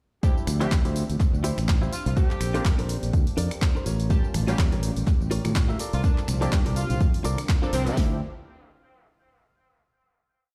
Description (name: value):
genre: filtered disco house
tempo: 124 BPM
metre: 4/4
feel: swing 57% on 16ths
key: D minor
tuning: A4 = 440 Hz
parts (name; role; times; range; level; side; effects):
- warm horn section; melody; 0.2-8.0 s; C4 to G4; -38 LUFS; equal; sidechain pumping, dub echo
- funky polysynth comp; accompaniment; 0.2-8.2 s; F3 to A5; -36 LUFS; equal; chorus, phaser, sidechain pumping
- punchy analog drum machine; drums; 0.2-8.1 s; hi-hat, kick drum, snare drum; -24 LUFS; equal; overdrive, small room ambience
- punchy analog drum machine; drums; 0.2-8.0 s; finger snaps, handclaps, hi-hat, tambourine; -37 LUFS; equal; overdrive, sidechain pumping on hats, small room ambience, sidechain pumping on perc
- fingered electric bass; bass; 0.5-8.2 s; A1 to C3; -29 LUFS; equal; sidechain pumping
- direct-recorded clean electric guitar; riff; 0.6-8.2 s; D4 to E5; -35 LUFS; equal; vintage 12-bit sampler grit, sidechain pumping
- tambourine and congas; percussion; 4.1-8.0 s; none; -38 LUFS; equal; none
room: little or no reverb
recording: played on a big sound system in a bare room, stone room reverb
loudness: -24 LUFS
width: mono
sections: 0.2-8.0 drop; 8.0-9.9 final chord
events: drop 0.2-8.0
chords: 0.2 Dm11; 2.2 Bbmaj9; 3.9 A7b9b13; 5.8 C13sus4; 8.0 Dm11